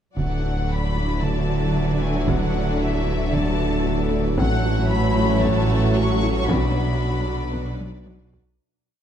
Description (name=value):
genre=cinematic, hybrid orchestral and electronic film score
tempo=114 BPM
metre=4/4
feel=straight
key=unclear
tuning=A4 = 440 Hz
part: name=dark symphonic violin section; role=melody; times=0.2-8.1 s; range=E5 to C#6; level=-30 LUFS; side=left 3 dB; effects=none
part: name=clear studio violin section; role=second line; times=0.2-8.4 s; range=F#4 to D5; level=-31 LUFS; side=left 3 dB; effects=none
part: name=rich symphonic viola section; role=accompaniment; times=0.2-8.4 s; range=F#3 to E4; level=-30 LUFS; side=equal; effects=none
part: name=clear trombone section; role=sustained chords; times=0.2-8.3 s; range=E3 to B3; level=-33 LUFS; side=right 3 dB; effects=none
part: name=dark French horn section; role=sustained chords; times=0.2-8.3 s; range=C#4 to F#4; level=-30 LUFS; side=left 2 dB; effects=none
part: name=glassy FM pad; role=sustained chords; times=1.1-8.6 s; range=E3 to E5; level=-30 LUFS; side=left 1 dB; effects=ensemble chorus, built-in reverb, phaser
part: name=soft round pluck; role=arpeggios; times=0.2-8.5 s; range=D3 to B4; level=-32 LUFS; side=right 4 dB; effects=none
part: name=clear symphonic double bass section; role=bass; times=0.2-8.4 s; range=A1 to D2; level=-27 LUFS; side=right 4 dB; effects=none
part: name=rich symphonic cello section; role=bass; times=0.2-8.4 s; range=A2 to D3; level=-27 LUFS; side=right 2 dB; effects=none
part: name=saturated sub bass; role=bass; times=0.2-8.6 s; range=D1 to B1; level=-26 LUFS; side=left 1 dB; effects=none
part: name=taiko ensemble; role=drums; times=0.2-8.6 s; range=none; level=-28 LUFS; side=equal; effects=none
room=moderate scoring stage reverb, RT60 1.5 s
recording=dark, warm production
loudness=-19 LUFS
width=side -9 dB against mid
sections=0.2-8.6 theme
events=fade-out 6.5-8.6; drum fill 7.8-8.6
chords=0.2 Dadd9; 4.4 A6; 6.5 Bm